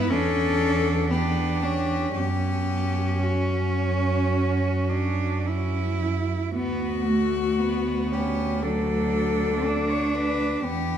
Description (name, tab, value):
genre	classical, lyrical piece for cello ensemble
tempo	52-60 BPM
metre	4/4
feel	rubato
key	B minor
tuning	A4 = 441 Hz
part	warm cello	melody	0.0-11.0 s	F#4 to C#5	-29 LUFS	left 7 dB	none
part	dark cello	second line	0.0-11.0 s	A3 to E4	-30 LUFS	right 8 dB	none
part	rich cello	accompaniment	0.0-11.0 s	F#3 to D4	-28 LUFS	left 2 dB	none
part	dark cello	bass	0.0-11.0 s	D2 to G2	-26 LUFS	right 2 dB	none
room	wet recital hall reverb, RT60 1.4 s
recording	none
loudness	-22 LUFS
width	side -9 dB against mid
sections	0.0-11.0 A section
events	none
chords	0.1 Em7; 2.2 F#sus4; 6.6 Bm/D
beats	0.10 1.12 | 2.16 3.23 4.32 5.45 | 6.55 7.59 8.63 9.65 | 10.66